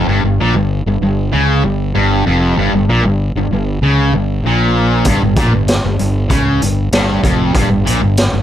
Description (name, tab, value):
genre	classic rock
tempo	96 BPM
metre	4/4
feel	straight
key	unclear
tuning	A4 = 441 Hz
part	sludgy distorted guitar	riff	0.0-8.4 s	F2 to Db3	-14 LUFS	equal	overdrive
part	fuzz fingered electric bass	bass	0.0-8.4 s	F1 to Db2	-16 LUFS	equal	overdrive
part	raw garage drum kit	drums	5.0-8.3 s	hi-hat, kick drum, snare drum	-16 LUFS	equal	none
room	light reverb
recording	none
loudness	-11 LUFS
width	side -11 dB against mid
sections	0.0-8.4 A section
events	none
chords	0.0 Bbm6/F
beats	| 0.06 0.69 1.31 1.94 | 2.56 3.19 3.81 4.43 | 5.06 5.68 6.30 6.92 | 7.55 8.17